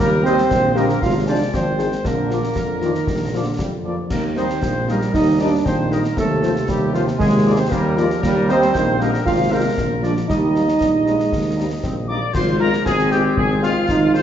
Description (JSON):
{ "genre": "military-style march for wind band", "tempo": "116 BPM", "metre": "2/4", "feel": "straight", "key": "Eb major", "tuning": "A4 = 440 Hz", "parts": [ { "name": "clear euphonium", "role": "second line", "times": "0.0-12.0 s", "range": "F3 to F4", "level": "-20 LUFS", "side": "right 3 dB", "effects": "none" }, { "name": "warm woodwind section", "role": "second line", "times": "0.0-14.2 s", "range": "F4 to F5", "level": "-25 LUFS", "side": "left 2 dB", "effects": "none" }, { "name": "clear trombone section", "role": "sustained chords", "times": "0.0-14.2 s", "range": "C3 to F4", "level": "-24 LUFS", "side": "right 2 dB", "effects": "none" }, { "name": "warm tuba", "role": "bass", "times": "0.0-14.2 s", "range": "Ab1 to F2", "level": "-22 LUFS", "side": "equal", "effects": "none" }, { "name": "concert snare drum, clash cymbals and concert bass drum", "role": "drums", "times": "0.0-14.2 s", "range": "none", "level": "-26 LUFS", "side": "left 1 dB", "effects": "none" }, { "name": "mellow trumpet section", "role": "melody", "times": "0.2-14.2 s", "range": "F4 to Eb5", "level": "-28 LUFS", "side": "left 1 dB", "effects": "none" }, { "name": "warm French horn section", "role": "accompaniment", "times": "0.2-14.2 s", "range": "F3 to Ab4", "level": "-27 LUFS", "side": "left 4 dB", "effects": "none" }, { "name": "bright piccolo", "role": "second line", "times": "12.1-14.2 s", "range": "F5 to D6", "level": "-26 LUFS", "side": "left 4 dB", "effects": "none" } ], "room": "wet recital hall reverb, RT60 1.5 s", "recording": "heard from further back in the room, nothing above 7.6 kHz", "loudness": "-16 LUFS", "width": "side -10 dB against mid", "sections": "0.0-12.3 A section; 12.3-14.2 B section", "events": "none", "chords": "0.0 Eb; 1.0 Fm/Ab; 2.0 Bb; 4.1 Eb; 6.2 F7/Eb; 7.2 Bb7(no3)/Eb; 8.2 Eb; 9.3 Fm/Ab; 9.8 Bb7; 10.3 Eb; 12.3 Fm/Ab" }